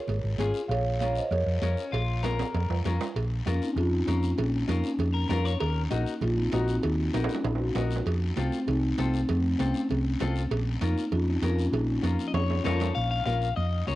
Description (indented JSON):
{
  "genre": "latin, cumbia",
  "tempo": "196 BPM",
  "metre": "4/4",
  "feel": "straight",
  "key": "Bb minor, Bb harmonic minor from 3.2 s",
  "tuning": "A4 = 441 Hz",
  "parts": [
    { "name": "marimba with soft mallets", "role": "melody", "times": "0.0-12.6 s", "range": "F3 to F5", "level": "-30 LUFS", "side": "equal", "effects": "cassette tape" },
    { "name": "hollow-body short-scale fingered electric bass", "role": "bass", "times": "0.1-14.0 s", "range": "Ab1 to F2", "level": "-28 LUFS", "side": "equal", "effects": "none" },
    { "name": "congas", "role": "percussion", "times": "0.1-14.0 s", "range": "none", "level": "-39 LUFS", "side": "right 6 dB", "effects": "none" },
    { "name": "cowbell and timbales", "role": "percussion", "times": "0.1-12.9 s", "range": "none", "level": "-36 LUFS", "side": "right 6 dB", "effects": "none" },
    { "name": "guiro", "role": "percussion", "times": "0.1-14.0 s", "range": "none", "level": "-45 LUFS", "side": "left 7 dB", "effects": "none" },
    { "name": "nylon-string guitar", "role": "accompaniment", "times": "0.4-14.0 s", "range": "C4 to Bb4", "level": "-35 LUFS", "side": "left 5 dB", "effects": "none" },
    { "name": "electric guitar at the edge of break-up", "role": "second line", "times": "1.6-2.8, 5.1-5.8, 12.3-14.0 s", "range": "Db4 to F5", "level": "-32 LUFS", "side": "left 6 dB", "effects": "none" }
  ],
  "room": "light reverb",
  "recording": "home recording on cassette",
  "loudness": "-25 LUFS",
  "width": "side -16 dB against mid",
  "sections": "0.0-3.2 A section; 3.2-13.0 B section",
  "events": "drum fill 2.2-3.2, 7.1-8.1, 12.3-13.0",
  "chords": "0.0 Db; 0.7 Bbm; 5.6 Ebm; 8.1 F; 10.5 Bbm"
}